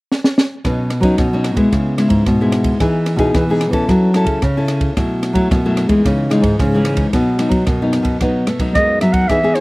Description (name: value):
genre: samba and choro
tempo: 111 BPM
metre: 4/4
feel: straight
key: unclear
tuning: A4 = 440 Hz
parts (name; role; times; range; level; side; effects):
- compact cocktail drum kit; drums; 0.1-9.6 s; kick drum, ride cymbal, rim click, snare drum; -19 LUFS; right 1 dB; none
- nylon-string guitar; accompaniment; 0.6-9.6 s; F#2 to A4; -17 LUFS; left 1 dB; none
- nylon-string guitar; bass; 0.6-9.5 s; G#2 to B3; -17 LUFS; equal; none
- growling clarinet; melody; 8.7-9.6 s; C#5 to F#5; -15 LUFS; right 1 dB; none
room: little or no reverb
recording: recorded outdoors, with no room sound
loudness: -13 LUFS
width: side -22 dB against mid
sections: 0.6-9.3 A section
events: drum fill 0.1-0.6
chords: 0.0 N.C.; 0.6 Badd9; 1.7 C#m7; 2.8 Emaj7; 3.9 F#m7; 5.0 B7sus4; 6.0 C#madd9; 7.1 B